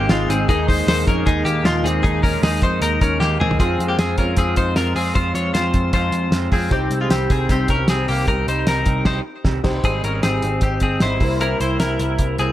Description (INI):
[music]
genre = jangly indie pop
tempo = 154 BPM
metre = 4/4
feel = straight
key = unclear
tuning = A4 = 440 Hz
[part]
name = electric guitar through a small old amp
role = accompaniment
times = 0.0-12.5 s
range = Ab2 to G4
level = -25 LUFS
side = right 2 dB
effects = wide subtle chorus
[part]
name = warbly lo-fi synth keys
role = accompaniment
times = 0.0-12.5 s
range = Eb4 to Eb5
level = -29 LUFS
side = left 1 dB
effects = chorus
[part]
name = ensemble organ-string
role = sustained chords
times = 0.0-3.6 s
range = Bb2 to Eb4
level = -32 LUFS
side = right 1 dB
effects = none
[part]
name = direct-recorded clean electric guitar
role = arpeggios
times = 0.0-12.5 s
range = Ab3 to Db5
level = -21 LUFS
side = left 2 dB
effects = lush chorus, digital delay
[part]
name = vintage muted picked electric bass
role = bass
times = 0.0-12.5 s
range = G1 to F2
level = -22 LUFS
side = equal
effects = none
[part]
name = cloth-damped thuddy drum kit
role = drums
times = 0.1-12.5 s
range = crash cymbal, hi-hat, kick drum, snare drum, toms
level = -20 LUFS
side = equal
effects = none
[sound]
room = small room ambience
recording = none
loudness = -16 LUFS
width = side -13 dB against mid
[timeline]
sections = 0.0-3.6 A section; 3.6-9.8 B section; 9.8-12.5 C section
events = drum fill 3.2-3.6; band accent 9.1-9.8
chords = 0.5 Ebsus4; 3.6 Fm; 6.7 Cm; 9.8 Abmaj7; 11.2 C7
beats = 0.10 | 0.49 0.88 1.27 1.65 | 2.04 2.43 2.82 3.21 | 3.60 3.99 4.38 4.77 | 5.16 5.55 5.94 6.33 | 6.72 7.11 7.50 7.89 | 8.28 8.67 9.06 9.45 | 9.85 10.24 10.63 11.02 | 11.41 11.80 12.20